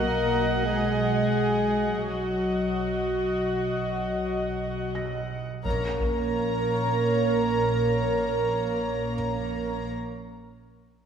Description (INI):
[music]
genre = cinematic, suspense film score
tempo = free time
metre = none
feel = none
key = Bb phrygian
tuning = A4 = 441 Hz
[part]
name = warm symphonic violin section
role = melody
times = 0.0-9.9 s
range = F#4 to Bb5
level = -35 LUFS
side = left 3 dB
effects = none
[part]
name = dark clarinet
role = second line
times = 0.0-9.9 s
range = F#4 to Bb4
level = -31 LUFS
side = left 2 dB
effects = none
[part]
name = rich studio violin section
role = second line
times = 0.0-9.9 s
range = F#4 to Bb5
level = -36 LUFS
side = left 1 dB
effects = none
[part]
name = warm studio viola section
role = accompaniment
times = 0.0-9.9 s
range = Bb4 to F#5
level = -32 LUFS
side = right 2 dB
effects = none
[part]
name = mellow French horn section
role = sustained chords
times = 0.0-9.8 s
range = Db4 to D#5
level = -31 LUFS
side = right 1 dB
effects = none
[part]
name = dark symphonic double bass section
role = bass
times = 0.0-9.9 s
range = Bb1 to B1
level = -32 LUFS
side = right 3 dB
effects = none
[part]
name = rich symphonic cello section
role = bass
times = 0.0-9.9 s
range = F#3 to Bb3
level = -31 LUFS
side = equal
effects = none
[part]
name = felt-muted upright piano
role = texture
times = 5.0-5.7 s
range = Bb6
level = -41 LUFS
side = equal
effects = none
[part]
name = taiko ensemble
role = drums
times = 5.6-7.0 s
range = none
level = -32 LUFS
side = equal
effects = none
[sound]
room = wet scoring stage reverb, RT60 1.8 s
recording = heard from further back in the room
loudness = -24 LUFS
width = side -7 dB against mid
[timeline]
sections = 0.0-5.7 A section; 5.7-9.1 B section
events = none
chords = 0.0 B; 5.7 Bbm